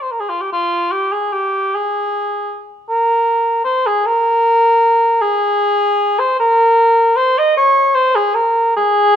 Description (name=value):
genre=classical, free, expressive piece for unaccompanied cor anglais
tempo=51 BPM (dotted quarters)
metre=6/8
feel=uneven beats, rubato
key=unclear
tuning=A4 = 436 Hz
part: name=dark cor anglais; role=solo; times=0.0-9.2 s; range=F4 to Eb5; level=-12 LUFS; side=equal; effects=none
room=light reverb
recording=close, detailed microphones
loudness=-12 LUFS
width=side -9 dB against mid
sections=0.0-9.2 A section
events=none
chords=none